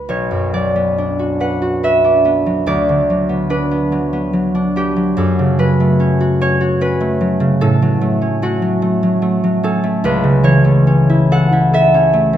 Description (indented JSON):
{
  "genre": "classical, solo harp piece",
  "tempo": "65-76 BPM",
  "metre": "3/4",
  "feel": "rubato",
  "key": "B minor",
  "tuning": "A4 = 436 Hz",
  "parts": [
    { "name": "concert harp", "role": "solo", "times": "0.0-12.4 s", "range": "B1 to F#5", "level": "-12 LUFS", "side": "equal", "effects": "none" }
  ],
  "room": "wet recital hall reverb, RT60 1.5 s",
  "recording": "none",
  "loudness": "-12 LUFS",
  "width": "side -11 dB against mid",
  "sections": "0.1-12.4 A section",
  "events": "none",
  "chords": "0.1 Bm; 2.7 Bm/D; 5.2 F#m; 7.6 F#m/A; 10.0 A/C#",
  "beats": "| 0.08 0.97 1.83 | 2.68 3.50 4.33 | 5.17 6.00 6.82 | 7.63 8.43 9.23 | 10.03 10.86 11.73"
}